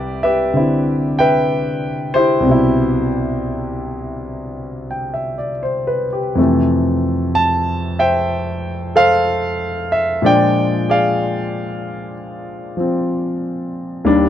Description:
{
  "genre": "solo jazz",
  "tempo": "62 BPM",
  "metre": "4/4",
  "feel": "swing 67% on 8ths, rubato",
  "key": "C major, F major from 6.4 s",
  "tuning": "A4 = 441 Hz",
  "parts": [
    { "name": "warm concert grand piano", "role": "solo", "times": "0.0-14.3 s", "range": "C2 to A5", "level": "-15 LUFS", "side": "equal", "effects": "none" }
  ],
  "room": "studio ambience",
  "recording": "dry, close 1970s-style studio recording",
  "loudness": "-15 LUFS",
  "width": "side -10 dB against mid",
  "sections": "0.0-6.4 A section; 6.4-14.3 B section",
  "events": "none",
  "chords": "0.0 Cmaj7; 6.4 Fmaj7; 10.2 Bb7"
}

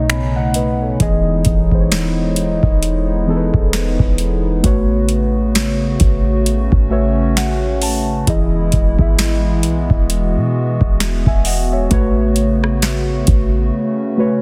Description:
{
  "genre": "contemporary R&B",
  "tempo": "66 BPM",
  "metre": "4/4",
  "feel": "swing 58% on 16ths",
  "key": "E major",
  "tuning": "A4 = 440 Hz",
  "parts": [
    { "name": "muted felt-like synth keys", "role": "accompaniment", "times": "0.0-14.4 s", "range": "B2 to B5", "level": "-21 LUFS", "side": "equal", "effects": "chorus" },
    { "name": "hollow soft pad", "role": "sustained chords", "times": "0.0-14.4 s", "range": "C#3 to F#4", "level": "-25 LUFS", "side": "equal", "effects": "chorus, sidechain pumping" },
    { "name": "clean 808-style bass", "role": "bass", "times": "0.0-13.7 s", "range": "D#1 to B2", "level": "-20 LUFS", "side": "equal", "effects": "none" },
    { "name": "booming analog drum machine", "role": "drums", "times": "0.1-13.5 s", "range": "finger snaps, hi-hat, kick drum, rim click, snare drum", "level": "-20 LUFS", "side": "equal", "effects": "soft clipping on snare" }
  ],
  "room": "digital ambience",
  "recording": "dense, heavily limited modern master",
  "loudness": "-16 LUFS",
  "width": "mono",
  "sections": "0.0-1.0 A section; 1.0-14.4 B section",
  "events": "synth keys fill 6.5-8.3",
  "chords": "0.0 B9; 1.0 Emaj7; 4.6 A69; 8.3 Emaj7; 11.9 A69"
}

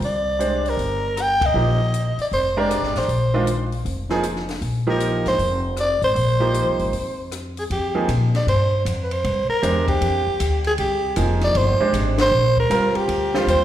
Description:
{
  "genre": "modal jazz",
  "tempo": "156 BPM",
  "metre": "4/4",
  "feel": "swing 65% on 8ths",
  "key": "F dorian from 7.7 s",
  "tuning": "A4 = 444 Hz",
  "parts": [
    { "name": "growling soprano saxophone", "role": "melody", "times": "0.0-13.6 s", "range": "G4 to G5", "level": "-21 LUFS", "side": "equal", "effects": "none" },
    { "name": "upright bass", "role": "bass", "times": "0.0-13.6 s", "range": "F1 to Bb2", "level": "-23 LUFS", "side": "left 1 dB", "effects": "none" },
    { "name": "compact cocktail drum kit", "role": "drums", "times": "0.0-13.6 s", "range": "hi-hat, kick drum, ride cymbal, rim click, snare drum", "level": "-31 LUFS", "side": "left 2 dB", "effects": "none" },
    { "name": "bright upright piano", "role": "accompaniment", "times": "0.4-13.6 s", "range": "Eb3 to C5", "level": "-24 LUFS", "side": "right 3 dB", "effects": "none" }
  ],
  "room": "wet recital hall reverb, RT60 1.4 s",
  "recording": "recorded in a church or concert hall",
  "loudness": "-18 LUFS",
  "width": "side -11 dB against mid",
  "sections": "0.0-7.7 A section; 7.7-13.6 B section",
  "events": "band accent 1.4, 12.1",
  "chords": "0.0 C7sus2; 1.5 Bb9sus4; 7.7 F9sus4"
}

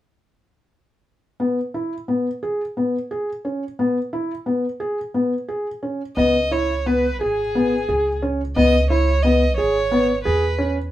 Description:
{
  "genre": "contemporary instrumental, chamber music in an uneven meter",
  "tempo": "177 BPM (eighths)",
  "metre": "7/8",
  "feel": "straight",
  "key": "C# minor",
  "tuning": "A4 = 441 Hz",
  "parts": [
    { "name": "felt-muted upright piano", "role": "arpeggios", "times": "1.4-10.8 s", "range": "B3 to G#4", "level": "-21 LUFS", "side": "left 1 dB", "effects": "none" },
    { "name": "warm violin", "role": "melody", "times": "6.2-10.7 s", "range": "G#4 to D#5", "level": "-22 LUFS", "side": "right 1 dB", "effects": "none" },
    { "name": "upright bass", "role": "bass", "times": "6.2-10.9 s", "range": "G#1 to E2", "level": "-23 LUFS", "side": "right 1 dB", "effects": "none" }
  ],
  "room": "moderate studio reverb, RT60 0.5 s",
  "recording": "heard from further back in the room",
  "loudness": "-18 LUFS",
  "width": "side -14 dB against mid",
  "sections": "1.4-6.2 A section; 6.2-10.9 B section",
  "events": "none",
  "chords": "1.4 C#m7"
}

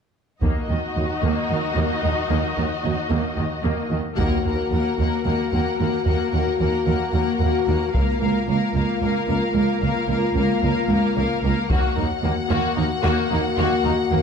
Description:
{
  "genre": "cinematic, epic orchestral film score",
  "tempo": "224 BPM (eighths)",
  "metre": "7/8",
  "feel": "straight",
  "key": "Eb minor",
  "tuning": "A4 = 440 Hz",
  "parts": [
    { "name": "dark symphonic violin section", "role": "second line", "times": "0.4-14.2 s", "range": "Bb3 to Eb5", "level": "-27 LUFS", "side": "left 3 dB", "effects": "none" },
    { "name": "warm symphonic viola section", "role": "accompaniment", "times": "0.4-14.2 s", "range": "Eb3 to Eb4", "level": "-28 LUFS", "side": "left 1 dB", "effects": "none" },
    { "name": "warm studio double bass section", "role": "bass", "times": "0.4-14.2 s", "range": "Db2 to Eb2", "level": "-26 LUFS", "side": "right 3 dB", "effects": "none" },
    { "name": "warm symphonic cello section", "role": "bass", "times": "0.4-14.2 s", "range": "Db2 to Eb2", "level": "-25 LUFS", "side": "right 2 dB", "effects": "none" },
    { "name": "solo taiko drums", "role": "drums", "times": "0.4-12.7 s", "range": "none", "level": "-25 LUFS", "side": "left 1 dB", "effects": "none" },
    { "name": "warm symphonic violin section", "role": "melody", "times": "4.2-14.2 s", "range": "F5 to Gb5", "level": "-30 LUFS", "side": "left 5 dB", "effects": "none" },
    { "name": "mellow French horn section", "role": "sustained chords", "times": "4.2-14.2 s", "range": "Bb3 to Gb4", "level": "-25 LUFS", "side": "left 6 dB", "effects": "none" }
  ],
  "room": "moderate scoring stage reverb, RT60 1.6 s",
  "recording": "dark, warm production",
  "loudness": "-19 LUFS",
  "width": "side -6 dB against mid",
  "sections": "0.4-4.2 A section; 4.2-14.2 B section",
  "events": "build-up 4.2-14.2; band accent 4.2-4.7",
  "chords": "0.4 Ebm; 7.9 Bbm/Db; 11.7 Ebm"
}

